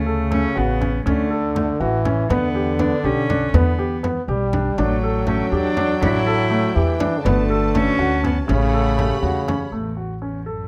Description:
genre	contemporary instrumental, chamber music in an uneven meter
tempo	242 BPM (eighths)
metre	5/8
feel	straight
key	A mixolydian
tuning	A4 = 442 Hz
part	rich cello	melody	0.0-10.7 s	E2 to E4	-27 LUFS	equal	none
part	clear French horn	second line	0.0-9.7 s	C#3 to G3	-26 LUFS	equal	none
part	upright bass	bass	0.0-10.7 s	G1 to E2	-25 LUFS	equal	none
part	warm grand piano	arpeggios	0.1-10.6 s	A3 to A4	-26 LUFS	equal	none
part	frame drum	percussion	0.3-9.7 s	none	-29 LUFS	equal	none
part	clear symphonic string section	sustained chords	4.8-9.7 s	D4 to B5	-34 LUFS	equal	none
room	light reverb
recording	close, detailed microphones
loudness	-20 LUFS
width	mono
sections	0.0-9.7 A section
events	none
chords	0.0 Dmaj9; 2.3 Em7; 4.8 A7sus4; 7.3 Gmaj9; 8.5 A13; 9.7 F#m7/A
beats	0.07 0.32 0.57 0.81 | 1.06 1.31 1.56 1.81 2.06 | 2.31 2.55 2.80 3.05 3.30 | 3.54 3.79 4.04 4.29 4.53 | 4.78 5.03 5.28 5.52 5.77 | 6.02 6.26 6.51 6.76 7.00 | 7.25 7.50 7.75 7.99 8.24 | 8.49 8.73 8.98 9.23 9.48 | 9.72 9.97 10.22 10.47

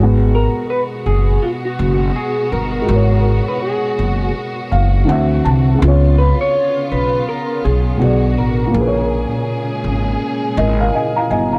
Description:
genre	lo-fi hip hop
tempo	82 BPM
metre	4/4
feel	swing 62% on 16ths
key	G# dorian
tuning	A4 = 443 Hz
part	felt-muted upright piano	accompaniment	0.0-11.6 s	A#2 to A#5	-22 LUFS	equal	cassette tape, low-pass filter
part	warm studio string section	sustained chords	0.0-11.6 s	B2 to G#4	-27 LUFS	equal	low-pass filter
part	upright bass	bass	0.0-11.6 s	F#1 to D2	-17 LUFS	equal	tube saturation
part	electric guitar through a small old amp	melody	0.3-9.8 s	E#4 to C#5	-23 LUFS	equal	phaser, low-pass filter, tape echo
room	light reverb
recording	dry, gritty hardware recording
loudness	-16 LUFS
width	mono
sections	0.0-11.6 A section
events	felt piano fill 4.3-5.8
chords	0.0 G#m9; 5.1 D9; 5.8 C#7; 8.0 Bm7; 8.7 A#m7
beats	0.69 1.42 2.15 | 2.88 3.61 4.34 5.08 | 5.81 6.54 7.27 8.00 | 8.73 9.47 10.20 10.93

